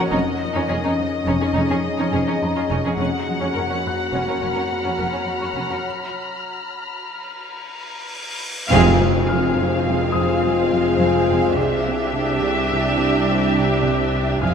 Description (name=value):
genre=cinematic, suspense film score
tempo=105 BPM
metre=5/4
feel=straight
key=F phrygian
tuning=A4 = 440 Hz
part: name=muted studio violin section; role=melody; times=0.0-14.5 s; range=Eb5 to Gb5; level=-26 LUFS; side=left 3 dB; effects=none
part: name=muted studio violin section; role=second line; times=0.0-14.5 s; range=Db4 to Bb4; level=-28 LUFS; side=equal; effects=none
part: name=muted studio viola section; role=accompaniment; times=0.0-14.5 s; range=C4 to D4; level=-27 LUFS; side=right 1 dB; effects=none
part: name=ethereal airy pad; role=sustained chords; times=0.0-14.5 s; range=Db4 to Gb5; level=-28 LUFS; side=left 1 dB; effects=ensemble chorus, built-in reverb
part: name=mellow French horn section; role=sustained chords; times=0.0-14.5 s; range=Bb3 to Gb4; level=-25 LUFS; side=left 4 dB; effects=none
part: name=muted studio cello section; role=bass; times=0.0-14.5 s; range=C2 to F2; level=-28 LUFS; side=right 3 dB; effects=none
part: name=dark baby grand piano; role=texture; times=0.0-14.5 s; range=Ab4 to Gb6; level=-34 LUFS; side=left 2 dB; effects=none
part: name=muted studio cello section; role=riff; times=0.1-14.5 s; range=F2 to C4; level=-27 LUFS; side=right 1 dB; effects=none
part: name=muted studio double bass section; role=bass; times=0.1-14.5 s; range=F1 to C2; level=-27 LUFS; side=right 3 dB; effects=none
part: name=muted studio violin section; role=texture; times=3.0-8.4, 14.4-14.5 s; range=Bb5 to Ab6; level=-31 LUFS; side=left 3 dB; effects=none
part: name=cymbal swell and impact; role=sound effects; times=7.6-11.6 s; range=none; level=-29 LUFS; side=equal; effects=none
part: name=cymbal swell and tam-tam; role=percussion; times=5.9-11.0 s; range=none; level=-32 LUFS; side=left 1 dB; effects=none
part: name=dark trombone section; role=sustained chords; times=8.7-14.5 s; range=C3 to Ab3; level=-27 LUFS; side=right 4 dB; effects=none
part: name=timpani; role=percussion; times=8.7-9.5, 14.4-14.5 s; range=F2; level=-27 LUFS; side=equal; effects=none
room=wet scoring stage reverb, RT60 1.8 s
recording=none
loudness=-18 LUFS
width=side -7 dB against mid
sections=0.0-8.7 A section; 8.7-14.5 B section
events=break 5.8-8.7; cymbal swell 7.6-8.7; band accent 8.7-9.3; impact 8.7-11.6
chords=0.1 Dbadd9/F; 3.0 Gb/F; 5.8 Bb5; 8.7 Fm; 11.6 Cadd9